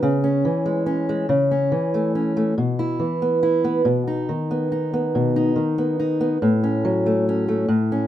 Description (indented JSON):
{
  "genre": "folk, solo fingerstyle acoustic guitar",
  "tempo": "47 BPM (dotted quarters)",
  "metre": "6/8",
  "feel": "straight",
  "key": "unclear",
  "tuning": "A4 = 440 Hz",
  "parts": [
    { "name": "fingerpicked old ladder-braced acoustic guitar", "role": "solo", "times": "0.0-8.1 s", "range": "A2 to E4", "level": "-18 LUFS", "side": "equal", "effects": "none" }
  ],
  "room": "light reverb",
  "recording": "minimal, uncompressed stereo recording",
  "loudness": "-19 LUFS",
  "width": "side -12 dB against mid",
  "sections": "0.0-8.1 A section",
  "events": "none",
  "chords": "0.0 C#m; 1.3 A/C#; 2.6 Bsus4; 3.9 B; 6.4 F#m/A"
}